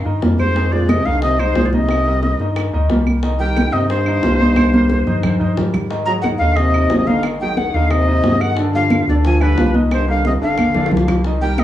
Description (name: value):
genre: Afro-Cuban jazz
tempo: 180 BPM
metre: 4/4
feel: straight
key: C minor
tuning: A4 = 440 Hz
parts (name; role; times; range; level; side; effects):
- breathy bright jazz flute; melody; 0.0-11.6 s; B4 to Bb5; -20 LUFS; left 1 dB; cassette tape
- mellow trombone; second line; 0.0-11.6 s; G2 to Gb3; -23 LUFS; right 1 dB; none
- saturated sub bass; bass; 0.0-11.6 s; G1 to Ab2; -19 LUFS; equal; none
- warm concert grand piano; accompaniment; 0.1-11.6 s; D3 to Eb5; -22 LUFS; right 1 dB; none
- congas; percussion; 0.1-11.6 s; none; -19 LUFS; equal; none
- bongos; percussion; 0.2-11.6 s; none; -27 LUFS; left 6 dB; none
- claves; percussion; 0.4-11.6 s; none; -33 LUFS; right 8 dB; none
room: moderate spring reverb, RT60 1.5 s, small room reverb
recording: home recording on cassette, small room ambience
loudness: -14 LUFS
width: side -12 dB against mid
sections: 0.0-11.3 A section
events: drum fill 4.6-5.9, 10.2-11.3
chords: 0.0 Cm7; 0.6 Fm7; 1.9 Cm7; 5.9 Ab7; 8.6 G7; 9.9 Cm7; 10.6 G5